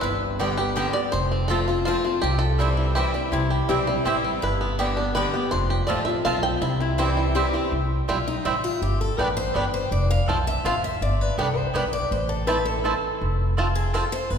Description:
bluegrass; 164 BPM; 3/4; straight; C major; A4 = 439 Hz
bluegrass banjo; melody; 0.0-14.0 s; G3 to G5; -28 LUFS; right 2 dB
picked steel-string acoustic guitar; accompaniment; 0.0-14.4 s; F2 to G5; -27 LUFS; left 2 dB
upright bass; bass; 0.0-14.4 s; F1 to C2; -26 LUFS; equal
mandolin; stabs; 0.4-14.0 s; B3 to A5; -29 LUFS; right 3 dB
lap resonator guitar; second line; 3.3-4.3, 6.8-7.7 s; E4 to G4; -30 LUFS; left 2 dB
wet church reverb, RT60 2.8 s; recorded in a church or concert hall; -21 LUFS; side -7 dB against mid
0.0-7.7 A section; 7.7-14.4 A section
five-string banjo solo 0.0-7.7; steel-string acoustic guitar solo 7.7-14.4
0.0 G; 1.1 F; 2.2 C; 4.4 G; 5.5 F; 6.6 C; 8.8 G; 9.9 F; 11.0 G; 12.1 Am; 13.2 F

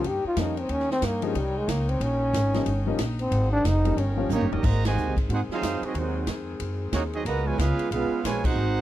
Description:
jazz, big band swing; 183 BPM; 4/4; swing 62% on 8ths; A4 = 439 Hz
breathy trombone; melody; 0.0-4.5 s; G3 to G4; -26 LUFS; equal
warm baby grand piano; accompaniment; 0.0-4.3 s; F3 to F4; -30 LUFS; left 6 dB
warm saxophone section; sustained chords; 0.0-8.8 s; Db3 to G5; -36 LUFS; left 3 dB
upright bass; bass; 0.0-8.8 s; Eb1 to Ab2; -27 LUFS; equal
swinging big-band drum kit; drums; 0.0-8.5 s; crash cymbal, hi-hat, kick drum, ride cymbal, snare drum, toms; -31 LUFS; equal
warm trumpet section; melody; 4.3-8.8 s; Ab3 to Bb5; -30 LUFS; right 4 dB
warm trombone section; second line; 4.3-8.8 s; Cb3 to Gb4; -30 LUFS; right 5 dB
little or no reverb; dry, close 1970s-style studio recording; -23 LUFS; side -13 dB against mid
0.0-4.6 A section; 4.6-8.8 B section
trombone solo 0.0-4.6; drum fill 4.3-4.6; band accent 4.8, 8.4
0.0 Eb7; 3.3 Ab7; 4.0 Eb7; 4.6 Ab7; 7.3 Db7

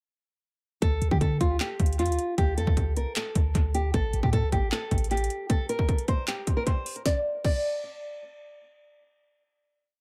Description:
hip hop, trap; 154 BPM; 4/4; half-time; D minor; A4 = 440 Hz
nylon-string guitar; melody; 0.8-8.2 s; F4 to D5; -32 LUFS; equal; low-pass filter, analog delay
clean 808-style bass; bass; 0.8-5.3 s; A1 to D3; -29 LUFS; equal
trap drum kit; drums; 0.8-7.6 s; crash cymbal, handclaps, hi-hat, kick drum, snare drum; -30 LUFS; equal
digital ambience; echo-heavy mix; -27 LUFS; mono
0.8-7.1 hook; 7.1-10.0 final note
0.8 D5; 3.9 A7(no3); 5.5 N.C.

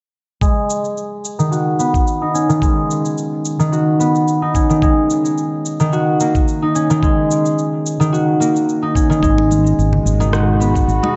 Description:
organic downtempo; 109 BPM; 4/4; swing 54% on 16ths; G# minor; A4 = 438 Hz
concert harp; arpeggios; 0.4-11.2 s; D#3 to F#4; -17 LUFS; equal; low-pass filter, tape echo
electronic kick drum; drums; 0.4-10.9 s; -19 LUFS; equal
electronic shaker and rim click; drums; 0.4-11.0 s; -30 LUFS; equal
bowed-like drone; sustained chords; 9.9-11.2 s; B2 to F#4; -25 LUFS; equal; built-in reverb, sidechain pumping
mellow fretless electric bass; bass; 9.2-11.0 s; G#1; -18 LUFS; equal
congas; percussion; 9.4-11.1 s; -27 LUFS; equal
wet plate reverb, RT60 2.1 s; dreamy mix soaked in reverb, nothing above 7.9 kHz; -16 LUFS; mono
0.4-11.2 A section
filter sweep on harp 0.4-11.2
0.4 G#m7; 4.8 D#m; 9.2 G#m7

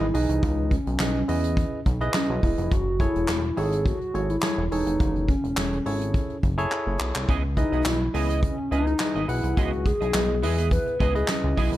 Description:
early-eighties boogie funk; 105 BPM; 4/4; straight; C# minor; A4 = 440 Hz
hollow clarinet-like synth lead; melody; 0.0-11.8 s; C#4 to B4; -27 LUFS; equal; chorus, slapback echo
barky tine electric piano; accompaniment; 0.0-11.8 s; E3 to F#5; -30 LUFS; right 1 dB
chorused synth bass; bass; 0.0-11.8 s; E1 to E2; -26 LUFS; equal
soft brush drum kit; drums; 0.1-11.8 s; handclaps, hi-hat, kick drum, snare drum; -27 LUFS; equal; gated reverb
clean electric guitar; riff; 7.3-11.8 s; B3 to D#5; -33 LUFS; right 6 dB; analog chorus
little or no reverb; -22 LUFS; side -14 dB against mid
0.0-11.8 A section
drum fill 6.7-7.3
0.0 C#m9; 2.7 F#m9; 7.3 C#m9

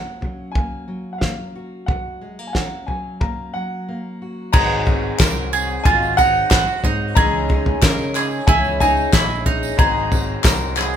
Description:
indie folk with a building arrangement; 91 BPM; 4/4; straight; Ab mixolydian; A4 = 439 Hz
clear upright piano; melody; 0.0-11.0 s; F5 to Bb5; -22 LUFS; left 1 dB
fingerpicked steel-string acoustic guitar; accompaniment; 0.0-4.5 s; Gb2 to Gb4; -31 LUFS; equal
cloth-damped thuddy drum kit; drums; 0.2-10.6 s; crash cymbal, kick drum, snare drum, toms; -18 LUFS; equal
bright grand piano; accompaniment; 4.5-11.0 s; Ab1 to Eb5; -30 LUFS; equal
picked twelve-string acoustic guitar; accompaniment; 4.5-11.0 s; Ab2 to Ab4; -27 LUFS; left 2 dB
bowl-back mandolin; arpeggios; 4.5-11.0 s; Eb4 to Bb4; -22 LUFS; right 6 dB
picked electric bass; bass; 4.5-11.0 s; Ab1 to Db3; -26 LUFS; equal
group handclap; percussion; 5.2-10.9 s; -24 LUFS; left 7 dB
tambourine; percussion; 5.2-11.0 s; -33 LUFS; right 6 dB
moderate large studio reverb, RT60 0.9 s; band playing live in one room; -16 LUFS; side -9 dB against mid
0.0-4.5 A section; 4.5-11.0 B section
break 3.9-4.5
0.0 Gb; 4.5 Ab7; 7.2 Dbmadd9; 9.8 Ab7

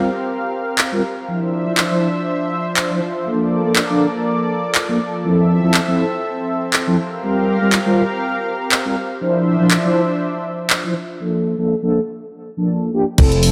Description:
nu-disco, nu disco; 121 BPM; 4/4; swing 55% on 16ths; A4 = 439 Hz
mellow synth brass; accompaniment; 0.0-13.5 s; F3 to C5; -20 LUFS; equal; chorus
lush unison pad; sustained chords; 0.0-13.5 s; F3 to F5; -24 LUFS; equal; chorus, sidechain pumping
house drum kit; drums; 0.8-13.5 s; crash cymbal, handclaps, hi-hat; -21 LUFS; equal
dry thumbed slap bass; bass; 13.2-13.5 s; F1; -18 LUFS; equal; tube saturation
electronic kick drum; drums; 13.2-13.3 s; -14 LUFS; equal
moderate echo chamber reverb, RT60 2.0 s, digital ambience; -18 LUFS; mono
0.0-13.2 A section
break 11.2-13.2
0.0 C7sus4; 1.3 Dm9; 3.3 Bbmaj7; 5.2 Fmaj7; 7.0 C7sus4; 9.2 Dm9; 11.2 Bbmaj7

